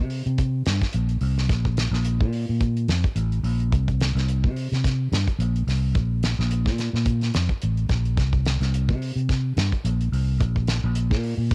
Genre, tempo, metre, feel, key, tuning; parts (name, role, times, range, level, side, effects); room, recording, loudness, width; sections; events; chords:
afrobeat; 108 BPM; 4/4; swing 56% on 16ths; A4 = 440 Hz
fingered electric bass; bass; 0.0-11.5 s; A1 to C3; -22 LUFS; equal
damped 70s drum kit; drums; 0.1-11.5 s; hi-hat, kick drum, snare drum; -25 LUFS; equal; cassette tape
little or no reverb; home recording on cassette; -20 LUFS; side -34 dB against mid
0.0-11.5 A section